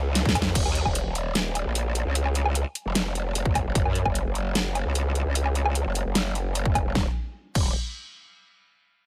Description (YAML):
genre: heavy wobble dubstep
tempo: 150 BPM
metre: 4/4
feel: half-time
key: Eb minor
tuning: A4 = 440 Hz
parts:
  - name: growl bass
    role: bass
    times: 0.0-7.7 s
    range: Eb1 to Gb2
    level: -28 LUFS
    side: equal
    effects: chorus, overdrive
  - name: dubstep drum kit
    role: drums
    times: 0.2-7.6 s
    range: crash cymbal, hi-hat, ride cymbal, snare drum, woodblock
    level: -30 LUFS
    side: equal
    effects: none
  - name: electronic kick drum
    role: drums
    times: 0.3-0.9, 3.5-4.1, 6.7-7.6 s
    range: none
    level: -28 LUFS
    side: equal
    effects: none
room: digital ambience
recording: none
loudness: -26 LUFS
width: mono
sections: 0.6-7.0 A section; 7.0-8.6 B section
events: drum fill 0.2-0.6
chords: none